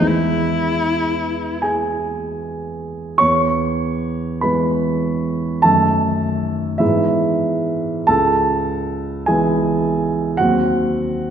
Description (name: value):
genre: classical, romantic duo for cello and grand piano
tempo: 36-55 BPM (dotted quarters)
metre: 6/8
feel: rubato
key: E major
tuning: A4 = 440 Hz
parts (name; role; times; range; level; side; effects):
- warm cello; melody; 0.0-1.6 s; E4; -21 LUFS; left 3 dB; none
- dark baby grand piano; accompaniment; 0.0-11.3 s; C#2 to C#6; -16 LUFS; right 1 dB; none
room: wet concert hall reverb, RT60 1.9 s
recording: none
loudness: -16 LUFS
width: side -8 dB against mid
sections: 0.0-3.2 A section; 3.2-11.3 B section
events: none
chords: 0.0 E; 5.6 D#dim/F#; 6.8 E/G#; 8.1 C#m7; 10.4 Cdim/Eb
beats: | 0.04 1.62 | 3.18 4.43 | 5.64 6.81 | 8.08 9.26 | 10.38